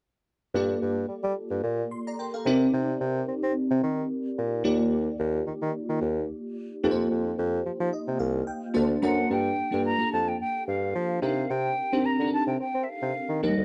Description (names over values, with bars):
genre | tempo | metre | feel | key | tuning
polished 1980s jazz-funk pop | 110 BPM | 4/4 | swing 54% on 16ths | G minor | A4 = 440 Hz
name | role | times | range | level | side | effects
mellow bassoon | bass | 0.5-13.6 s | C2 to C4 | -30 LUFS | equal | none
bell-like FM electric piano | accompaniment | 0.6-13.6 s | F3 to C6 | -30 LUFS | equal | phaser, ensemble chorus
concert flute | melody | 9.0-13.6 s | Eb5 to Bb5 | -32 LUFS | equal | slapback echo
room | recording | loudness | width
small room ambience | dry, close 1970s-style studio recording | -27 LUFS | mono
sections
0.5-9.3 A section; 9.3-13.6 B section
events
FM electric piano fill 7.7-9.3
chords
0.5 Gm7; 2.5 Cm9; 4.6 Ebmaj9; 6.8 F7sus4; 8.8 D7b13; 9.3 Gm7; 11.2 Cm9